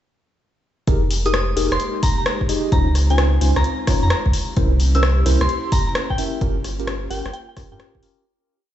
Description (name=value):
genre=UK garage, two-step garage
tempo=130 BPM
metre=4/4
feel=swing 66% on 16ths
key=F minor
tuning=A4 = 439 Hz
part: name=airy breathy pad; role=sustained chords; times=1.1-8.2 s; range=Ab3 to G4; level=-31 LUFS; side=left 1 dB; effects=chorus, sidechain pumping
part: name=mellow tine electric piano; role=stabs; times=0.9-8.2 s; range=Db4 to E5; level=-25 LUFS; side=left 1 dB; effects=medium stereo tremolo, digital delay
part: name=saturated sub bass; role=bass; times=0.9-7.8 s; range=F1 to G2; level=-18 LUFS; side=equal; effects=none
part: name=electronic kick drum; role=drums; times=0.9-8.0 s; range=none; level=-20 LUFS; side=equal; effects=none
part: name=punchy analog drum machine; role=drums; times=0.9-8.1 s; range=hi-hat, rim click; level=-25 LUFS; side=left 1 dB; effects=none
part: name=soft synth bell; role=melody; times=1.3-8.3 s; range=G5 to E6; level=-27 LUFS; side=equal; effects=chorus, digital delay
room=little or no reverb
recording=played on a big sound system in a bare room, stone room reverb, nothing above 8.0 kHz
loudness=-17 LUFS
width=side -12 dB against mid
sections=0.9-8.3 drop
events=drop 0.9-8.3; fade-out 5.8-8.3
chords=0.9 Fm11; 2.7 Dbmaj9; 4.3 C7b9; 6.4 Gm7b5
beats=| 0.88 1.34 1.80 2.26 | 2.72 3.18 3.64 4.11 | 4.57 5.03 5.49 5.95 | 6.41 6.88 7.34 7.80